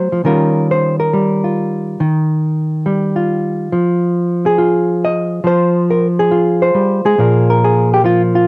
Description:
solo jazz; 139 BPM; 4/4; swing 67% on 8ths; Eb mixolydian; A4 = 440 Hz
hollow-body jazz guitar; solo; 0.0-8.5 s; Bb2 to Eb5; -12 LUFS; equal; cassette tape
moderate studio reverb, RT60 0.6 s; home recording on cassette; -12 LUFS; side -26 dB against mid
0.0-8.5 A section
0.3 Eb9; 3.7 Fm7; 7.2 Bb7(no3)

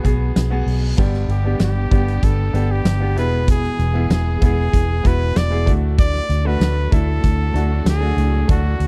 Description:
piano-driven pop; 96 BPM; 4/4; straight; A4 = 440 Hz
clear trumpet; melody; 0.0-8.9 s; F#4 to D5; -28 LUFS; equal
clear baby grand piano; accompaniment; 0.0-8.9 s; G2 to A4; -27 LUFS; equal
warm studio string section; sustained chords; 0.0-8.9 s; D3 to G#4; -34 LUFS; equal
vintage muted fingered electric bass; bass; 0.0-8.9 s; E1 to D2; -21 LUFS; equal
huge arena drum kit; drums; 0.0-8.9 s; crash cymbal, hi-hat, kick drum, snare drum; -20 LUFS; equal
reverse cymbal; sound effects; 0.5-1.0 s; -40 LUFS; equal
small room reverb; dry, close 1970s-style studio recording; -18 LUFS; mono
1.0-8.9 A section
reverse cymbal 0.5-1.0
0.0 G#m7/B; 1.0 G; 3.2 E; 5.7 D

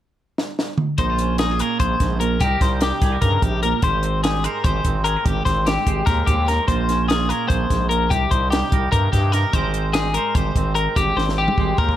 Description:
math rock and midwest emo; 294 BPM (eighths); 7/8; straight; Ab major; A4 = 440 Hz
compact cocktail drum kit; drums; 0.4-12.0 s; hi-hat, kick drum, snare drum, toms; -22 LUFS; equal
twangy electric guitar; accompaniment; 1.0-12.0 s; Ab2 to C5; -26 LUFS; right 11 dB
twelve-string electric guitar; arpeggios; 1.0-12.0 s; G4 to C5; -22 LUFS; left 5 dB; spring reverb
growling FM bass; bass; 1.0-11.9 s; Ab1 to G2; -22 LUFS; equal
light reverb; -17 LUFS; side -12 dB against mid
1.0-12.0 A section
drum fill 0.4-1.0, 11.2-12.0
0.0 N.C.; 1.0 Bbm9; 2.4 Cm7; 3.8 Abmaj9; 6.7 Bbm9; 8.1 Cm7; 9.5 Abmaj9

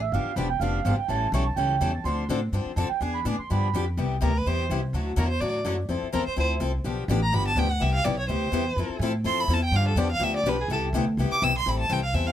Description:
acoustic string swing (jazz manouche); 250 BPM; 4/4; swing 55% on 8ths; C major from 4.0 s; A4 = 440 Hz
mellow accordion; second line; 0.0-3.9 s; E5 to D6; -28 LUFS; right 9 dB
upright bass; bass; 0.0-12.3 s; E1 to A2; -26 LUFS; equal
picked steel-string acoustic guitar; accompaniment; 0.1-12.3 s; C3 to A4; -29 LUFS; left 5 dB
warm violin; melody; 4.2-12.3 s; Ab4 to E6; -27 LUFS; right 1 dB
little or no reverb; close, detailed microphones; -23 LUFS; side -11 dB against mid
0.0-4.0 A section; 4.0-11.7 A section
accordion solo 0.0-4.0; violin solo 4.0-12.3
0.1 G7; 1.1 A7; 2.0 Dm7; 3.0 E7; 3.5 G7; 4.0 Cmaj7; 4.9 Dadd9; 5.9 Fmaj7; 6.8 G7; 7.8 Cmaj7; 8.8 Fmaj7; 9.7 G7; 10.7 Cmaj7; 11.7 Am7

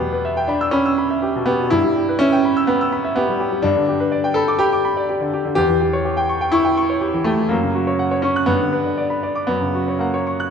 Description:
classical, virtuoso piano study; 124 BPM; 4/4; rubato; A4 = 438 Hz
clear grand piano; solo; 0.0-10.5 s; E2 to F#6; -16 LUFS; equal
wet scoring stage reverb, RT60 1.6 s; dark, warm production; -16 LUFS; side -6 dB against mid
0.0-10.5 A section
0.0 Em; 1.7 Em/G; 3.6 G; 5.6 C#dim/E; 7.5 F#; 8.5 G; 9.5 F#

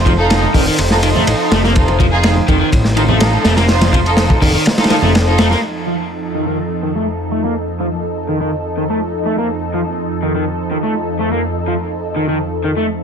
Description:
breakbeat, breaks; 124 BPM; 4/4; straight; A4 = 438 Hz
lush unison pad; sustained chords; 0.0-13.0 s; F2 to C5; -20 LUFS; equal; chorus, phaser, sidechain pumping
warm chamber string section; stabs; 0.0-5.5 s; Eb4 to C5; -19 LUFS; right 2 dB; dub echo
fat analog bass; bass; 0.0-5.6 s; F1 to A1; -16 LUFS; equal
crunchy overdriven guitar; riff; 0.1-12.9 s; Eb3 to Bb3; -19 LUFS; equal; tube saturation, low-pass filter, dub echo
crunchy breakbeat drum kit; drums; 0.1-5.6 s; hi-hat, kick drum, ride cymbal, snare drum; -15 LUFS; equal
congas; percussion; 0.1-5.1 s; -23 LUFS; right 4 dB
moderate studio reverb, RT60 0.6 s; -13 LUFS; side -7 dB against mid
0.0-5.6 A section; 5.6-13.0 B section
0.0 F7

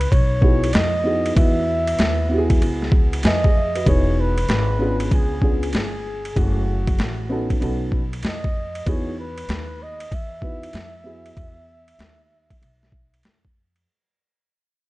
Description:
hip hop, jazz-hop; 96 BPM; 4/4; swing 64% on 16ths; E major; A4 = 441 Hz
breathy flugelhorn; melody; 0.0-13.3 s; F#4 to E5; -26 LUFS; equal
upright bass; bass; 0.0-13.8 s; E1 to F2; -24 LUFS; equal
boom bap sampler-style drum kit; drums; 0.0-13.9 s; hi-hat, kick drum, ride cymbal, snare drum; -20 LUFS; equal; overdrive, vintage 12-bit sampler grit
dark upright piano; accompaniment; 0.4-11.5 s; G#3 to G#5; -25 LUFS; right 1 dB
light reverb; dark, warm production; -18 LUFS; side -19 dB against mid
0.0-3.9 A section; 3.9-13.9 B section
upright piano fill 2.9-3.9; fade-out 3.9-13.9
0.0 Emaj7; 5.1 C#7b9; 6.4 F#m9; 7.6 B9; 8.9 Emaj7

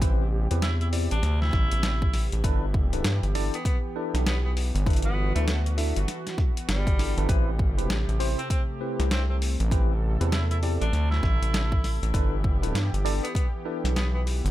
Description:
glitch hop; 99 BPM; 4/4; swing 62% on 16ths; A dorian; A4 = 444 Hz
warm analog pad; sustained chords; 0.0-14.5 s; C3 to A4; -36 LUFS; equal; chorus, sidechain pumping
barky tine electric piano; stabs; 0.0-13.9 s; C4 to E5; -34 LUFS; equal; medium stereo tremolo, vintage 12-bit sampler grit, sidechain pumping, ping-pong delay
gritty driven synth bass; bass; 0.0-14.5 s; G1 to D2; -25 LUFS; equal
boom bap sampler-style drum kit; drums; 0.0-14.5 s; hi-hat, snare drum; -32 LUFS; equal; small room reverb
electronic kick drum; drums; 0.0-13.5 s; -25 LUFS; equal; small room reverb
rubbery square bass; bass; 0.5-14.4 s; G1 to G2; -25 LUFS; equal; tube saturation
bright tenor saxophone; melody; 0.6-14.2 s; G3 to E4; -35 LUFS; equal; ping-pong delay
digital ambience; -23 LUFS; side -14 dB against mid
0.0-14.5 A section
0.0 Am7; 2.4 G6; 7.3 Am7; 12.1 G6

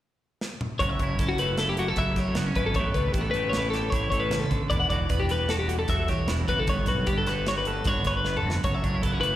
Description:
math rock and midwest emo; 153 BPM; 5/4; straight; A4 = 440 Hz
modern studio drum kit; drums; 0.4-9.3 s; hi-hat, kick drum, snare drum, toms; -30 LUFS; equal
twelve-string electric guitar; accompaniment; 0.8-9.4 s; G2 to B4; -31 LUFS; right 5 dB; slapback echo
twelve-string electric guitar; arpeggios; 0.8-9.4 s; F#4 to F#5; -27 LUFS; left 3 dB; slapback echo
fuzz fingered electric bass; bass; 0.8-9.4 s; E1 to F#2; -29 LUFS; equal; overdrive
small room ambience; live gig heard through the venue's PA, recital hall reverb; -23 LUFS; side -13 dB against mid
0.8-9.4 A section
drum fill 0.4-0.8, 8.2-8.6
0.0 N.C.; 0.8 F#m7; 2.8 A9; 4.7 Em9; 6.7 Gmaj9; 8.6 F#m7

